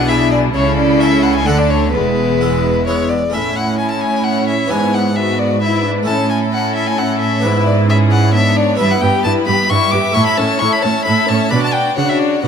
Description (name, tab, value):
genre	classical, baroque-style concerto movement with solo episodes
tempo	132 BPM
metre	3/4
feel	straight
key	A major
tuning	A4 = 440 Hz
part	clear chamber violin section	melody	0.0-12.5 s	E4 to E5	-24 LUFS	left 1 dB	none
part	rich violin	melody	0.0-12.5 s	B4 to D6	-18 LUFS	left 3 dB	none
part	rich chamber violin section	second line	0.0-12.5 s	B3 to C#5	-21 LUFS	left 6 dB	none
part	harpsichord	accompaniment	0.0-12.5 s	E2 to C#5	-21 LUFS	right 2 dB	none
part	rich chamber viola section	accompaniment	0.0-12.5 s	G3 to E4	-21 LUFS	equal	none
part	clear chamber cello section	bass	0.0-12.5 s	E2 to D3	-18 LUFS	right 3 dB	none
part	clear studio double bass section	bass	0.0-3.1 s	E1 to D2	-20 LUFS	right 5 dB	none
room	light reverb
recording	close, detailed microphones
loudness	-12 LUFS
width	side -7 dB against mid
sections	0.0-3.3 A section; 3.3-12.5 A section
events	none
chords	0.0 E7/B; 0.5 A/C#; 1.5 D5; 1.9 E; 3.3 A; 4.7 E7/G#; 6.1 A; 7.4 E7/G#; 8.8 Em/G; 10.2 A; 11.5 Bm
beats	0.09 | 0.54 1.00 1.46 | 1.93 2.40 2.87 | 3.33 3.80 4.25 | 4.71 5.17 5.62 | 6.08 6.53 6.99 | 7.44 7.89 8.35 | 8.80 9.25 9.70 | 10.16 10.61 11.07 | 11.52 11.98 12.44